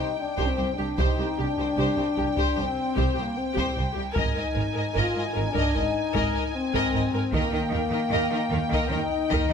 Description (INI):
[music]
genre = cinematic, epic orchestral film score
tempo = 76 BPM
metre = 4/4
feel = straight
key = C minor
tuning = A4 = 441 Hz
[part]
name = warm symphonic violin section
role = melody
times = 0.0-9.5 s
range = G5 to Ab5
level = -34 LUFS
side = equal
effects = none
[part]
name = warm symphonic violin section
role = second line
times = 0.0-9.5 s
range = G4 to Eb5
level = -32 LUFS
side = left 2 dB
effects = none
[part]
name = warm symphonic viola section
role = accompaniment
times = 0.0-9.5 s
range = G4 to Bb4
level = -32 LUFS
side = right 1 dB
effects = none
[part]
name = warm French horn section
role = sustained chords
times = 0.0-9.5 s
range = Bb3 to F4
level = -28 LUFS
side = left 4 dB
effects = none
[part]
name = rich symphonic cello section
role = bass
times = 0.0-9.5 s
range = C2 to Eb3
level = -32 LUFS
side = right 2 dB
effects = none
[part]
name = taiko ensemble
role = drums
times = 0.4-9.5 s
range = none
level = -30 LUFS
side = right 1 dB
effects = none
[part]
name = rich symphonic double bass section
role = bass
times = 0.6-9.4 s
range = Ab1 to Eb2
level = -32 LUFS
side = right 3 dB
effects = none
[sound]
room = light reverb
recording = close, detailed microphones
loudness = -23 LUFS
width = side -7 dB against mid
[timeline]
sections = 0.0-9.5 A section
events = none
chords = 0.0 Cm; 4.2 Absus2; 7.3 Eb